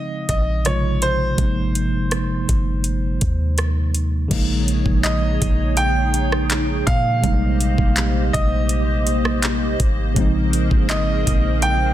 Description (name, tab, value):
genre	contemporary R&B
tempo	82 BPM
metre	4/4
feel	straight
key	unclear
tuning	A4 = 440 Hz
part	bright grand piano	melody	0.0-11.9 s	C5 to G5	-25 LUFS	right 1 dB	digital delay
part	mellow tine electric piano	accompaniment	0.0-11.9 s	C3 to F4	-24 LUFS	right 1 dB	medium stereo tremolo
part	clean 808-style bass	bass	0.3-11.9 s	G1 to Bb2	-21 LUFS	equal	none
part	smooth R&B drum kit	drums	0.3-11.8 s	crash cymbal, handclaps, hi-hat, kick drum, rim click	-21 LUFS	equal	soft clipping on snare
part	hollow soft pad	sustained chords	4.3-11.9 s	Bb3 to Eb5	-26 LUFS	left 1 dB	ensemble chorus, sidechain pumping
room	little or no reverb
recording	dense, heavily limited modern master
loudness	-17 LUFS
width	side -12 dB against mid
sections	0.0-4.3 A section; 4.3-11.9 B section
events	none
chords	0.0 Bbm11; 1.4 Ab6; 4.3 Eb7sus4/Bb; 7.2 Abmaj7/Bb; 10.2 Bbm11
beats	0.65 | 1.38 2.12 2.85 3.58 | 4.31 5.04 5.77 6.51 | 7.24 7.97 8.70 9.43 | 10.16 10.90 11.63